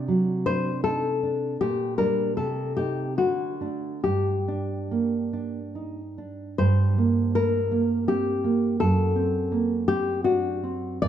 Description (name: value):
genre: romantic duo for nylon-string guitar and classical guitar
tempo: 68-84 BPM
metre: 3/4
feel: rubato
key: G minor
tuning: A4 = 439 Hz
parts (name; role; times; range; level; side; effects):
- nylon-string guitar; melody; 0.0-11.1 s; F#4 to D5; -26 LUFS; left 5 dB; none
- nylon-string guitar; accompaniment; 0.0-11.1 s; F#2 to Eb4; -25 LUFS; right 3 dB; none
room: moderate recital hall reverb, RT60 1.7 s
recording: dark, warm production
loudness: -22 LUFS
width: side -10 dB against mid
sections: 0.0-6.6 A section; 6.6-11.1 B section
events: none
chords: 0.0 D7/C; 1.6 Gm/Bb; 2.4 Cm; 3.2 D; 4.0 Gm; 8.8 D7/F#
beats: 0.07 0.84 | 1.60 2.37 3.18 | 4.04 4.91 5.75 | 6.58 7.35 8.07 | 8.80 9.52 10.24 | 11.02